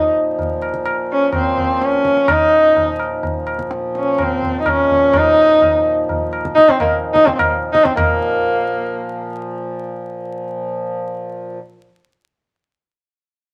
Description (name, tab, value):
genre	indian classical, Hindustani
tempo	127 BPM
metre	3/4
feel	straight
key	Bb raga bageshri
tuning	A4 = 444 Hz
part	dark sarangi	melody	0.0-9.3 s	Bb3 to Eb4	-16 LUFS	equal	none
part	hand-pumped harmonium	drone	0.0-11.6 s	Bb2 to F3	-27 LUFS	equal	none
part	tabla	percussion	0.4-8.1 s	none	-24 LUFS	equal	none
room	moderate club reverb, RT60 0.7 s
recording	vinyl crackle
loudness	-16 LUFS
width	mono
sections	0.0-8.0 A section; 8.0-10.8 B section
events	none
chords	none